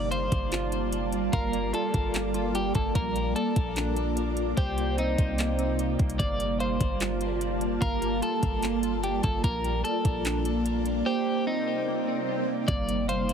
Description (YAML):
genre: hip hop, atmospheric cloud-rap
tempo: 148 BPM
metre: 4/4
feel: half-time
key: G minor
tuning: A4 = 440 Hz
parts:
  - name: electric guitar at the edge of break-up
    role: melody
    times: 0.0-13.3 s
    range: Eb4 to D5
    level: -31 LUFS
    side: left 2 dB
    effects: ping-pong delay
  - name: ethereal airy pad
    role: sustained chords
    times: 0.0-13.3 s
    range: C3 to A5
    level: -30 LUFS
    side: right 1 dB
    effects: ensemble chorus, built-in reverb, phaser, sidechain pumping
  - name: glassy digital keys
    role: arpeggios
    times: 0.0-13.3 s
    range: Bb3 to F5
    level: -34 LUFS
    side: right 2 dB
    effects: chorus, ping-pong delay
  - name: warm 808-style bass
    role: bass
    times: 0.0-13.3 s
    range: G1 to C2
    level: -31 LUFS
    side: equal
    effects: none
  - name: trap drum kit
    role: drums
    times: 0.1-13.3 s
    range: handclaps, hi-hat, kick drum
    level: -30 LUFS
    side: equal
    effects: none
  - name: swell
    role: sound effects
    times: 11.6-12.7 s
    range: none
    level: -37 LUFS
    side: equal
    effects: none
room: light reverb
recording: heavily compressed radio sound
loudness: -25 LUFS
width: side -7 dB against mid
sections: 0.0-12.7 A section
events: silent gap 11.1-12.7; swell 11.6-12.7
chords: 0.0 Gm7; 3.0 Bb; 4.6 Cm7; 6.2 Gm7; 9.4 Bb; 11.1 Cm7; 12.7 Gm7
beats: 0.12 0.52 0.93 | 1.33 1.74 2.14 2.55 | 2.95 3.36 3.76 4.17 | 4.57 4.98 5.38 5.79 | 6.20 6.60 7.01 7.41 | 7.82 8.22 8.63 9.03 | 9.44 9.84 10.25 10.65 | 11.06 11.47 11.87 12.28 | 12.68 13.09